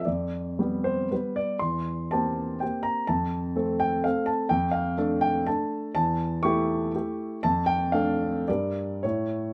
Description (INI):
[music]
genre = classical, romantic triple-time dance for piano with dotted rhythms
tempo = 95-134 BPM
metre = 3/4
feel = rubato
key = F major, D minor from 4.5 s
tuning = A4 = 442 Hz
[part]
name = warm grand piano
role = solo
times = 0.0-9.5 s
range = E2 to C#6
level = -27 LUFS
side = equal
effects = none
[sound]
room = little or no reverb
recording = close, detailed microphones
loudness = -27 LUFS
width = mono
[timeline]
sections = 0.0-9.5 A section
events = none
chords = 0.1 G7/F; 1.6 C7/E; 3.1 F; 4.5 Dm/F; 5.9 A7/E; 7.4 Dm/F; 8.5 Gm